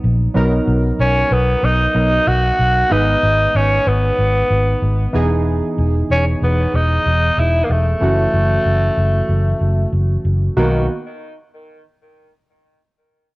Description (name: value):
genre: 1980s-style pop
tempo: 94 BPM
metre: 4/4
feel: straight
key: B major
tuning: A4 = 440 Hz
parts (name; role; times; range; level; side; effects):
- warm analog keys; accompaniment; 0.0-10.9 s; D#3 to B4; -22 LUFS; right 1 dB; chorus, cassette tape
- vintage muted fingered electric bass; bass; 0.0-10.9 s; E1 to B1; -16 LUFS; equal; none
- raspy tenor saxophone; melody; 1.0-10.9 s; D#3 to F#4; -18 LUFS; equal; cassette tape, tape echo
room: moderate spring reverb, RT60 1.3 s, small room reverb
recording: home recording on cassette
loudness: -14 LUFS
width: side -21 dB against mid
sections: 0.4-10.6 A section; 10.6-13.1 B section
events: none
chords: 0.4 Bmaj7; 2.9 G#m; 5.1 Emaj7; 8.0 F#m7; 10.6 Bmaj7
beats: | 0.36 0.99 1.63 2.27 | 2.91 3.55 4.18 4.82 | 5.46 6.10 6.74 7.38 | 8.02 8.65 9.29 9.93 | 10.57